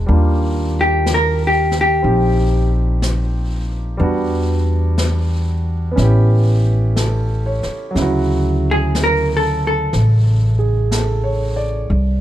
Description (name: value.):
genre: jazz ballad.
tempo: 61 BPM.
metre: 4/4.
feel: swing 68% on 8ths.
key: unclear.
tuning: A4 = 440 Hz.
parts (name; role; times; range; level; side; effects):
warm baby grand piano; accompaniment; 0.0-12.2 s; C#3 to D5; -22 LUFS; right 2 dB; none.
upright bass; bass; 0.0-12.2 s; A1 to E2; -16 LUFS; equal; none.
jazz brush drum kit; drums; 0.1-12.2 s; brushed snare drum, hi-hat, snare drum; -27 LUFS; left 2 dB; none.
vintage hollow-body jazz guitar; melody; 0.8-2.7, 8.7-10.6 s; G4 to Bb4; -17 LUFS; equal; none.
room: little or no reverb.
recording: none.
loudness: -14 LUFS.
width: side -12 dB against mid.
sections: 0.0-12.2 A section.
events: hollow-body jazz guitar solo 0.0-12.2.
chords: 0.1 Ebmaj9; 4.0 Em9; 6.0 A7; 8.0 Dmaj9.